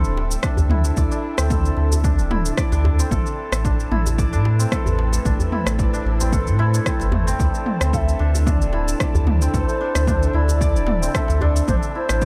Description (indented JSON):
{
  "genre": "organic downtempo",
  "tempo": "112 BPM",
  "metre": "4/4",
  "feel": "swing 54% on 16ths",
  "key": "unclear",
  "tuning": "A4 = 440 Hz",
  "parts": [
    { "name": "ethereal airy pad", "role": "sustained chords", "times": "0.0-12.2 s", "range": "A3 to E5", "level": "-34 LUFS", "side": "equal", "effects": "ensemble chorus, built-in reverb, vintage 12-bit sampler grit, sidechain pumping" },
    { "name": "santur", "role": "arpeggios", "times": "0.0-12.2 s", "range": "A3 to D5", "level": "-29 LUFS", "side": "equal", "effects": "tape echo" },
    { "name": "warm sub bass", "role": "bass", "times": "0.0-12.2 s", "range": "D1 to A2", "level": "-22 LUFS", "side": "equal", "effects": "none" },
    { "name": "deep house drum kit", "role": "drums", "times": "0.0-12.2 s", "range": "rim click, shaker, toms", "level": "-29 LUFS", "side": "equal", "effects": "overdrive" },
    { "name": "wind-like tuned noise texture", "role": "texture", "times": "0.0-12.2 s", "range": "A4 to A5", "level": "-38 LUFS", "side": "equal", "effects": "built-in reverb" },
    { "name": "djembe", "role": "percussion", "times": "0.2-11.7 s", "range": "none", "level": "-29 LUFS", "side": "equal", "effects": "none" },
    { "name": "electronic kick drum", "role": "drums", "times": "0.4-12.2 s", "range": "none", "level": "-25 LUFS", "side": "equal", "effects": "overdrive" },
    { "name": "low ney", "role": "melody", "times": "7.9-12.2 s", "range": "C5 to F5", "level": "-29 LUFS", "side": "equal", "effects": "tape echo" }
  ],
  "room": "little or no reverb",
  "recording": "dark, warm production",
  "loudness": "-20 LUFS",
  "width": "mono",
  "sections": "0.0-12.2 A section",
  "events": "none",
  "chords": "0.0 D5; 3.1 Am; 7.4 D5; 11.7 Am",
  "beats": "0.43 | 0.97 1.50 2.04 2.58 | 3.11 3.65 4.18 4.72 | 5.25 5.79 6.33 6.86 | 7.40 7.93 8.47 9.00 | 9.54 10.07 10.61 11.15 | 11.68 12.22"
}